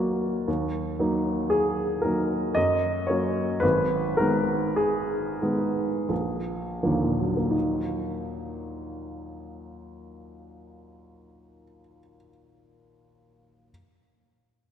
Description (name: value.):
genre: classical, romantic character piece for solo piano.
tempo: 39-59 BPM.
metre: 3/4.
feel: rubato.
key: Eb minor.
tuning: A4 = 440 Hz.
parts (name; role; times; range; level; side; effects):
warm upright piano; solo; 0.0-13.7 s; Ab1 to Eb5; -24 LUFS; equal; none.
room: wet concert hall reverb, RT60 2.4 s.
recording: none.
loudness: -23 LUFS.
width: side -9 dB against mid.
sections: 0.5-7.5 A section; 7.5-11.5 B section.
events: slowing down 0.0-7.5.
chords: 0.5 Ebm; 2.6 Gb; 3.6 Abm; 6.1 Bb7; 7.5 Ebm.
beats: | 0.47 1.51 2.56 | 3.63 4.79 6.09 | 7.53 8.85 10.18.